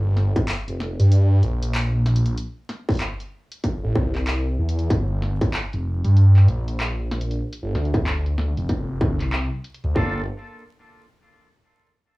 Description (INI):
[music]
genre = glitch hop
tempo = 95 BPM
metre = 4/4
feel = swing 62% on 16ths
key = G dorian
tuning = A4 = 440 Hz
[part]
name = phased detuned saw bass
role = bass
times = 0.0-10.2 s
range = F1 to G2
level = -19 LUFS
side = equal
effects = phaser, tube saturation
[part]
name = dubstep drum kit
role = drums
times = 0.2-9.9 s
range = handclaps, hi-hat, snare drum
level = -30 LUFS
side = equal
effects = low-pass filter on hats, cassette tape, low-pass filter on snare
[part]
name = electronic kick drum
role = drums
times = 0.4-10.1 s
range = none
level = -23 LUFS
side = equal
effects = distortion, cassette tape
[part]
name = semi-hollow electric guitar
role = stabs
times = 9.9-10.2 s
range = Bb3 to A4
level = -30 LUFS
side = equal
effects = sidechain pumping, cassette tape, tape echo
[sound]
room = little or no reverb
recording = home recording on cassette, vinyl crackle, small room ambience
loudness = -19 LUFS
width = side -21 dB against mid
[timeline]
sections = 0.0-10.0 A section; 10.0-12.2 B section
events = none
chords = 0.0 Gm7; 2.4 Am (rootless); 4.9 Gm7; 7.4 Dm7; 10.0 Gm7